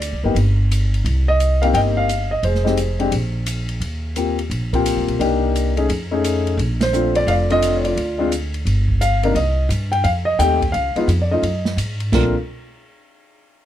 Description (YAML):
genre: jazz piano trio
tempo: 173 BPM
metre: 4/4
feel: swing 64% on 8ths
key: unclear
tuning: A4 = 442 Hz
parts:
  - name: warm grand piano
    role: melody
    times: 0.0-12.3 s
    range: C3 to G5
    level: -19 LUFS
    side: left 2 dB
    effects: none
  - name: upright bass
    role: bass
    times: 0.0-12.3 s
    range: F1 to Ab2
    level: -20 LUFS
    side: equal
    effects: none
  - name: open jazz drum kit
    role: drums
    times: 0.0-12.2 s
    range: crash cymbal, hi-hat, kick drum, ride cymbal, snare drum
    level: -28 LUFS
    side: right 2 dB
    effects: none
room: little or no reverb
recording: dark, warm production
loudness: -16 LUFS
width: side -11 dB against mid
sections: 0.0-9.4 A section; 9.4-12.1 B section; 12.1-13.5 C section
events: band accent 6.8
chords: 0.4 N.C.; 1.0 Cm7; 2.4 Fmadd9; 3.1 Bbsus2; 3.8 Eb6; 5.2 Cm7; 5.9 F7alt; 6.6 Bbmaj7; 8.0 Dm; 8.7 G5; 9.4 Cm; 10.0 F7; 10.7 Db; 11.4 Ebmadd11/Gb; 12.1 N.C.